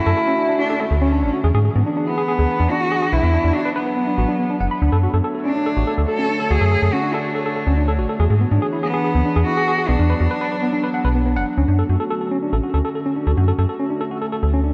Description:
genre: IDM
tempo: 142 BPM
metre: 4/4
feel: straight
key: D lydian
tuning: A4 = 440 Hz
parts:
  - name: rich cello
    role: melody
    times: 0.0-11.2 s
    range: A3 to A4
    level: -24 LUFS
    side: equal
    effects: tape echo
  - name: warbly tape-like pad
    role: sustained chords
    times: 0.0-14.7 s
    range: D3 to C#5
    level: -27 LUFS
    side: equal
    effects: chorus, built-in reverb
  - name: tine electric piano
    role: arpeggios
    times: 0.1-14.7 s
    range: B3 to B5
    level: -26 LUFS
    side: equal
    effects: low-pass filter, delay
  - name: metallic FM bass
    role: bass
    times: 0.1-14.7 s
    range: F#1 to G#2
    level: -20 LUFS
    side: equal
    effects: none
room: moderate lush hall reverb, RT60 2.8 s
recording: worn, warbling old tape, cassette tape, warbly pitch drift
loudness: -19 LUFS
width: mono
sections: 0.0-11.6 A section; 11.6-14.7 B section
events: none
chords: 0.0 Dmaj7; 1.4 E7; 3.1 Bm; 4.8 Dmaj7; 8.2 E7; 9.9 Bm; 11.6 Dmaj7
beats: 0.17 0.59 1.01 | 1.44 1.86 2.28 2.70 | 3.13 3.55 3.97 4.39 | 4.82 5.24 5.66 6.08 | 6.51 6.93 7.35 7.78 | 8.20 8.62 9.04 9.46 | 9.89 10.31 10.73 11.15 | 11.58 12.00 12.42 12.85 | 13.27 13.69 14.11 14.54

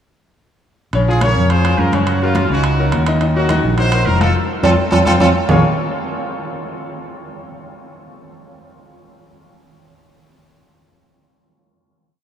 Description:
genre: latin, salsa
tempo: 210 BPM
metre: 4/4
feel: straight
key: Bb minor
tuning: A4 = 445 Hz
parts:
  - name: bright grand piano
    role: accompaniment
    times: 0.9-5.6 s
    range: Db3 to F5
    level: -21 LUFS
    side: left 2 dB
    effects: none
  - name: fingered electric bass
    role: bass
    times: 0.9-5.6 s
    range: F1 to Gb2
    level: -16 LUFS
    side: equal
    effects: none
  - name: congas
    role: percussion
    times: 0.9-5.6 s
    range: none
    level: -23 LUFS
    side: equal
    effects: none
  - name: timbales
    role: percussion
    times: 0.9-5.6 s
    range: none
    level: -23 LUFS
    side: right 4 dB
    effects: none
  - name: brilliant horn section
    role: melody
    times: 1.1-5.6 s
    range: C4 to Db5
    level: -20 LUFS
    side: equal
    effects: none
room: wet cathedral reverb, RT60 6.8 s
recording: in a vast, echoing space, small room reverb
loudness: -13 LUFS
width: side -9 dB against mid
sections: 0.9-5.5 verse; 5.5-6.6 final chord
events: band accent 4.4-5.5; drum fill 5.1-5.5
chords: 0.9 Bbm7; 2.1 Gb; 3.2 Ebmadd9; 4.4 F; 5.5 Bbm7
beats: | 0.94 1.22 1.50 1.79 | 2.07 2.36 2.64 2.93 | 3.21 3.50 3.78 4.07 | 4.35 4.64 4.92 5.21 | 5.50

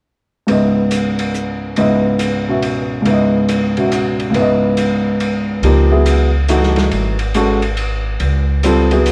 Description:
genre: modal jazz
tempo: 140 BPM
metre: 3/4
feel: swing 65% on 8ths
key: C# minor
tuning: A4 = 441 Hz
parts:
  - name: warm baby grand piano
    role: accompaniment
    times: 0.5-9.1 s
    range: C#2 to E5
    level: -17 LUFS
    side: equal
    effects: cassette tape
  - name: open jazz drum kit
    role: drums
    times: 0.5-9.1 s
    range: hi-hat, ride cymbal, snare drum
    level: -25 LUFS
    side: equal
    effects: cassette tape
  - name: upright bass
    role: bass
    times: 5.6-9.1 s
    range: G#1 to C#2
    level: -17 LUFS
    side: equal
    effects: none
room: light reverb, small room ambience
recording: home recording on cassette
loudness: -15 LUFS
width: mono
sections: 0.5-5.6 A section; 5.6-9.1 B section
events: none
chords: 0.5 C#m9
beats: | 0.48 0.91 1.34 | 1.77 2.20 2.63 | 3.06 3.49 3.92 | 4.35 4.78 5.21 | 5.63 6.06 6.49 | 6.92 7.35 7.77 | 8.20 8.63 9.06

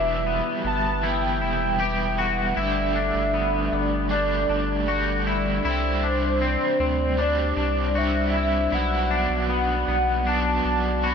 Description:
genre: dream pop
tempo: 78 BPM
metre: 4/4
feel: straight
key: G major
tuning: A4 = 440 Hz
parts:
  - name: warm velvety synth lead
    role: melody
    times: 0.0-11.1 s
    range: C5 to B5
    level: -26 LUFS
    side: right 1 dB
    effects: chorus, digital delay
  - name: overdriven electric guitar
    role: accompaniment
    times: 0.0-11.1 s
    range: B2 to G4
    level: -30 LUFS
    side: right 4 dB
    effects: tremolo, analog chorus
  - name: glass harmonica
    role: sustained chords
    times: 0.0-11.1 s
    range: G3 to F#5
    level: -29 LUFS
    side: left 2 dB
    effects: none
  - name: twangy electric guitar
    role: arpeggios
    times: 0.0-11.1 s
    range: B3 to G4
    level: -27 LUFS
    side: left 5 dB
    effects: analog chorus, digital delay
  - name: saturated sub bass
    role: bass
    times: 0.0-11.1 s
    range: E1 to D2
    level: -27 LUFS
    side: equal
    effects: none
room: moderate huge ambient reverb, RT60 4.0 s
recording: none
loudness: -21 LUFS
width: side -6 dB against mid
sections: 0.0-11.1 A section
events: none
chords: 0.0 Emadd9; 2.6 Gsus2; 5.6 Csus2; 8.7 Bm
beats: 0.26 1.03 1.80 | 2.57 3.34 4.11 4.88 | 5.65 6.42 7.18 7.96 | 8.72 9.49 10.26 11.03

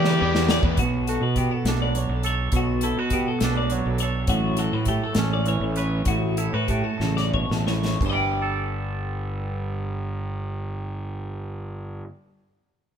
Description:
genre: math rock and midwest emo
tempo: 58-69 BPM (dotted quarters)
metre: 6/8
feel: straight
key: G lydian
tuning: A4 = 439 Hz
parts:
  - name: clear trumpet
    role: melody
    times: 0.0-0.6 s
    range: G4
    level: -26 LUFS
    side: right 2 dB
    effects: none
  - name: twelve-string electric guitar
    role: arpeggios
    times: 0.0-12.1 s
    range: F#4 to G5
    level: -28 LUFS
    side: left 4 dB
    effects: none
  - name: overdriven electric guitar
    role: riff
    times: 0.0-0.8 s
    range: E3 to G4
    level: -29 LUFS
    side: left 2 dB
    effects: none
  - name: fuzz fingered electric bass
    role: bass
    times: 0.0-12.0 s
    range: G1 to E3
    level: -26 LUFS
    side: equal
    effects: overdrive
  - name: modern studio drum kit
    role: drums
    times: 0.0-8.2 s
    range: china cymbal, hi-hat, kick drum, snare drum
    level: -27 LUFS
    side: equal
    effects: none
  - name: twangy electric guitar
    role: accompaniment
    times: 0.8-12.5 s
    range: G2 to B4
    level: -28 LUFS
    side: right 5 dB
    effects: none
room: moderate stone room reverb, RT60 1.4 s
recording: band playing live in one room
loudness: -22 LUFS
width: side -8 dB against mid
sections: 0.8-8.0 A section; 8.0-12.1 B section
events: drum fill 0.0-0.8, 7.0-8.0; slowing down 4.3-8.0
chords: 0.0 Em7; 0.8 Bm9; 4.3 A69; 8.0 Gsus2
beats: | 0.79 1.66 | 2.54 3.41 | 4.29 5.17 | 6.08 7.02 | 8.02 9.05 | 10.08 11.11

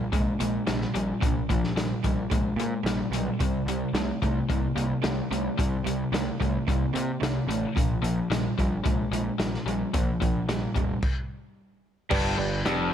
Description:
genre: classic rock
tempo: 110 BPM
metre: 4/4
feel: straight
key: unclear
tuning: A4 = 439 Hz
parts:
  - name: biting overdriven guitar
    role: riff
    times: 0.0-12.9 s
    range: F2 to Bb3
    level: -30 LUFS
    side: left 9 dB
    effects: none
  - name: crunchy overdriven guitar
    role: riff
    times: 0.0-12.9 s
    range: F2 to Bb3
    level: -31 LUFS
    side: right 9 dB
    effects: none
  - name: fuzz picked electric bass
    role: bass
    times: 0.1-12.9 s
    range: F1 to C3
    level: -31 LUFS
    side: equal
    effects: overdrive
  - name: vintage drum kit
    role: drums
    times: 0.1-12.8 s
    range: crash cymbal, hi-hat, kick drum, snare drum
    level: -29 LUFS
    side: equal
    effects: none
  - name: reed electric piano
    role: accompaniment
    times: 12.1-12.9 s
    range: G4 to D5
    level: -31 LUFS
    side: right 4 dB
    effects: none
room: light reverb, small room ambience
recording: none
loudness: -24 LUFS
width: side -9 dB against mid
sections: 0.0-12.1 A section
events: stop 11.0-12.1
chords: 0.0 Bb5; 3.4 C5; 7.8 Bb5; 12.1 G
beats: 0.12 0.67 | 1.21 1.76 2.30 2.85 | 3.40 3.94 4.49 5.03 | 5.58 6.12 6.67 7.21 | 7.76 8.30 8.85 9.40 | 9.94 10.49 11.03 11.58 | 12.12 12.67

